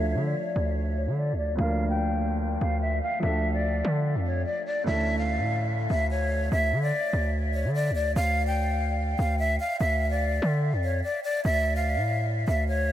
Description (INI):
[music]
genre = hip hop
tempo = 146 BPM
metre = 4/4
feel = half-time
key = D harmonic minor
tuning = A4 = 441 Hz
[part]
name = breathy jazz flute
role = melody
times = 0.0-12.9 s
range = C#5 to G5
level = -28 LUFS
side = left 1 dB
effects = low-pass filter, ping-pong delay
[part]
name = felt-muted upright piano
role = accompaniment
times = 0.0-6.5 s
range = D2 to Bb4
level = -33 LUFS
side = equal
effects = low-pass filter
[part]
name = distorted 808-style bass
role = bass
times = 0.0-12.9 s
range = D2 to D3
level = -26 LUFS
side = equal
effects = distortion
[sound]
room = moderate huge ambient reverb, RT60 6.7 s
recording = dreamy mix soaked in reverb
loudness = -24 LUFS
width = side -12 dB against mid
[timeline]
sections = 0.0-6.5 A section; 6.5-12.9 B section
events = filter sweep 0.0-6.5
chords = 0.0 Dm; 1.6 Bb/D; 3.2 Dm; 4.9 A/D; 6.5 N.C.; 9.8 Dm; 11.4 A5/D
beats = 0.35 0.76 1.18 | 1.59 2.00 2.41 2.82 | 3.23 3.64 4.05 4.46 | 4.87 5.29 5.70 6.11 | 6.52 6.93 7.34 7.75 | 8.16 8.57 8.98 9.39 | 9.80 10.22 10.63 11.04 | 11.45 11.86 12.27 12.68